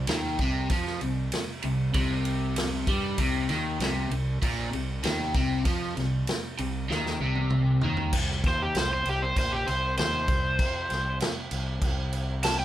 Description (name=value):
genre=blues rock power trio and southern rock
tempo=97 BPM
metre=4/4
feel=straight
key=unclear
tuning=A4 = 440 Hz
part: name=overdriven electric guitar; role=riff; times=0.0-8.1 s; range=Bb2 to G3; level=-28 LUFS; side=equal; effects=phaser
part: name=fuzz fingered electric bass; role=bass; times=0.0-12.6 s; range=Bb1 to G2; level=-31 LUFS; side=equal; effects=overdrive
part: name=vintage drum kit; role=drums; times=0.1-12.6 s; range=crash cymbal, kick drum, ride cymbal, snare drum, toms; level=-29 LUFS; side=equal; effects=none
part: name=overdriven slide guitar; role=melody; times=8.5-12.6 s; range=G4 to A5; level=-27 LUFS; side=equal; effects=none
room=moderate small room reverb, RT60 0.5 s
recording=band playing live in one room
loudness=-25 LUFS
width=side -12 dB against mid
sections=0.0-8.1 A section; 8.1-12.6 B section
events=drum fill 6.9-8.1; electric slide guitar solo 8.1-12.6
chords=0.0 C5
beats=0.09 | 0.71 1.33 1.95 2.57 | 3.19 3.81 4.43 5.05 | 5.66 6.28 6.90 7.52 | 8.13 8.75 9.37 9.98 | 10.60 11.21 11.83 12.44